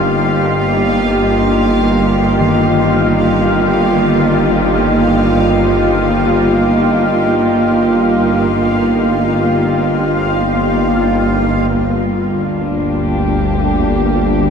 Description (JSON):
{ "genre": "dark ambient drone", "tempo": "free time", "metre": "none", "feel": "none", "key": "unclear", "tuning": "A4 = 440 Hz", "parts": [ { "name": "dark studio cello section", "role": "sustained chords", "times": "0.0-14.5 s", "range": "G2 to G4", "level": "-13 LUFS", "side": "equal", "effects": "none" }, { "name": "bowed-like drone", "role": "drone", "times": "0.0-14.5 s", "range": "G1 to D2", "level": "-17 LUFS", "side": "equal", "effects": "built-in reverb" }, { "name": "bubbling stepped-filter texture", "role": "texture", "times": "0.0-14.5 s", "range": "F4 to F5", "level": "-21 LUFS", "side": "equal", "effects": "chorus, built-in reverb" }, { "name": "gamelan-type bossed gongs", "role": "arpeggios", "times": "2.4-8.6 s", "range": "Eb3", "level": "-24 LUFS", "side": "left 5 dB", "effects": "ping-pong delay" }, { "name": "taiko ensemble", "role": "percussion", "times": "11.7-14.0 s", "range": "none", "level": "barely audible", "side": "none", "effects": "none" } ], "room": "wet huge ambient reverb, RT60 7.6 s", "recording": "none", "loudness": "-11 LUFS", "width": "side -6 dB against mid", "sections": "0.0-11.7 A section; 11.7-14.5 B section", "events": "filter sweep on synth drone 11.7-14.5", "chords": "0.0 Eb/G; 11.7 Gm", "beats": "free time" }